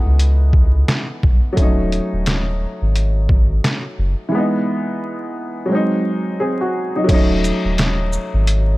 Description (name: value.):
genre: hip hop, boom-bap hip-hop.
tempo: 87 BPM.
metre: 4/4.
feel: swing 62% on 16ths.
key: unclear.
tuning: A4 = 440 Hz.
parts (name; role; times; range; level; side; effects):
dark upright piano; accompaniment; 0.0-8.8 s; E3 to G#4; -20 LUFS; equal; high-pass filter, low-pass filter.
soft dub sub bass; bass; 0.1-8.8 s; D#1 to C#2; -16 LUFS; equal; none.
trip hop sampler-style drum kit; drums; 0.2-8.7 s; crash cymbal, hi-hat, kick drum, shaker, snare drum; -17 LUFS; equal; none.
room: little or no reverb.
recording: vinyl crackle.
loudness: -15 LUFS.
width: side -19 dB against mid.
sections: 0.0-7.1 A section; 7.1-8.8 B section.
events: drums muted 4.3-7.1.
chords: 0.0 C#m7; 1.6 D#m7b5; 4.3 Emaj7; 5.7 G#7; 7.1 D#m7b5.